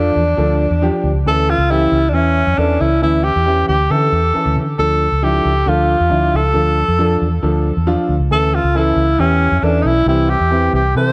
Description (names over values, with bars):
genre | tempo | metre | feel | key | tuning
uptempo 1960s-style soul | 136 BPM | 4/4 | straight | D harmonic minor | A4 = 440 Hz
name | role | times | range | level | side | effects
breathy tenor saxophone | melody | 0.0-11.1 s | C#4 to C5 | -19 LUFS | equal | tape echo
clear upright piano | accompaniment | 0.0-11.1 s | E3 to A4 | -22 LUFS | equal | none
vintage muted fingered electric bass | bass | 0.0-11.1 s | B1 to D3 | -19 LUFS | equal | none
room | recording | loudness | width
moderate spring reverb, RT60 2.0 s | dark, warm production | -15 LUFS | mono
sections
0.0-11.1 A section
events
none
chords
0.0 Dm; 8.3 A; 10.1 C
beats
0.38 0.82 | 1.26 1.70 2.14 2.58 | 3.02 3.46 3.90 4.34 | 4.79 5.22 5.67 6.11 | 6.55 6.99 7.43 7.87 | 8.31 8.75 9.19 9.63 | 10.08 10.52 10.96